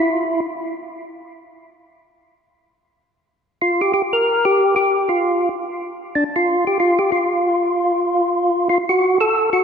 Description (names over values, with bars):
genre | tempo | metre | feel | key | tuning
jazz | 189 BPM | 4/4 | swing 61% on 8ths | unclear | A4 = 440 Hz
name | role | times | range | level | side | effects
percussive tonewheel organ | solo | 0.0-0.4, 3.6-9.6 s | D4 to Bb4 | -16 LUFS | equal | slow rotary speaker, overdrive, diffuse ambient delay
room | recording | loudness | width
wet lush hall reverb, RT60 2.3 s | dreamy mix soaked in reverb | -16 LUFS | side -6 dB against mid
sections
0.0-9.6 A section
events
none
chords
none